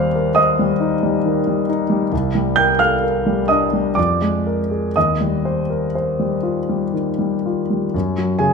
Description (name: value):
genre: classical, impressionist solo piano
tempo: 58-69 BPM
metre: 3/4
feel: rubato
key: Eb major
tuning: A4 = 442 Hz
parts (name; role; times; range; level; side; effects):
- clear grand piano; solo; 0.0-8.5 s; C2 to G6; -16 LUFS; left 1 dB; none
room: moderate recital hall reverb, RT60 1.4 s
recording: close, detailed microphones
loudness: -16 LUFS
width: side -5 dB against mid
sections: 0.0-7.9 A section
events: none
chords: 0.0 Eb6; 2.1 Cm11; 4.0 Fmadd11; 5.0 Eb69; 7.9 Gbsus2